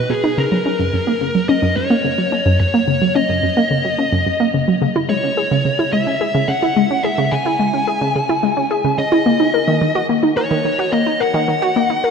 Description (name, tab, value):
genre	ambient, sequencer-driven space music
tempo	108 BPM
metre	4/4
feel	straight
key	unclear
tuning	A4 = 440 Hz
part	fuzz lead guitar	melody	0.0-12.1 s	G#4 to G#5	-19 LUFS	left 1 dB	distortion, ping-pong delay
part	analog pluck	riff	0.0-12.1 s	F#2 to A#4	-16 LUFS	equal	chorus, ping-pong delay
room	wet lush hall reverb, RT60 2.8 s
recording	dreamy mix soaked in reverb, nothing above 10.5 kHz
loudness	-14 LUFS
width	side -6 dB against mid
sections	0.0-12.1 A section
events	filter sweep on synth arpeggio sound 0.0-12.1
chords	0.4 F#6; 4.8 C#5; 9.3 D#m